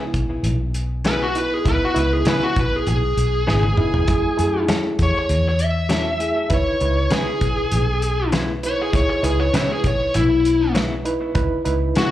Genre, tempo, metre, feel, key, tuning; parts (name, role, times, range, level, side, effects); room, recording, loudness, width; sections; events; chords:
straight-eighth soul blues; 99 BPM; 4/4; straight; C# minor; A4 = 439 Hz
barky reed electric piano; accompaniment; 0.0-12.1 s; A3 to B4; -24 LUFS; right 2 dB; overdrive, medium tremolo, slapback echo
direct-recorded clean electric guitar; stabs; 0.0-12.1 s; C#3 to A4; -28 LUFS; left 4 dB; spring reverb, slapback echo, analog delay
vintage muted fingered electric bass; bass; 0.1-12.1 s; F#1 to F#3; -22 LUFS; equal
warm soul drum kit; drums; 0.1-12.1 s; hi-hat, kick drum, snare drum, toms; -24 LUFS; equal
smooth overdriven lead guitar; melody; 1.1-12.1 s; E4 to E5; -21 LUFS; left 1 dB; slapback echo
little or no reverb; live gig heard through the venue's PA, club reverb; -17 LUFS; side -13 dB against mid
0.0-12.1 A section
lead electric guitar solo 0.0-12.1; drum fill 3.5-4.1
0.0 C#m7; 4.1 F#m7; 6.5 C#m7